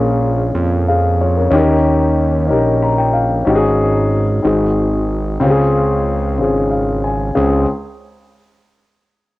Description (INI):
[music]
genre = slow gospel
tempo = 62 BPM (dotted quarters)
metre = 6/8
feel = straight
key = Db major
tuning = A4 = 441 Hz
[part]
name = dark grand piano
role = accompaniment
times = 0.0-7.7 s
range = Db2 to Bb5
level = -14 LUFS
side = left 2 dB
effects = cassette tape
[part]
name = fat analog bass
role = bass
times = 0.0-7.7 s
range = Ab1 to F2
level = -17 LUFS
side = right 2 dB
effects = none
[sound]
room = light reverb, small room ambience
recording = home recording on cassette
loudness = -13 LUFS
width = side -17 dB against mid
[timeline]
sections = 0.0-7.4 A section; 7.4-9.3 B section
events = grand piano fill 2.5-3.5, 6.4-7.4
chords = 0.0 Bbm7; 1.5 Eb7; 3.5 Ab7sus4; 4.4 Ab7; 5.4 Dbmaj7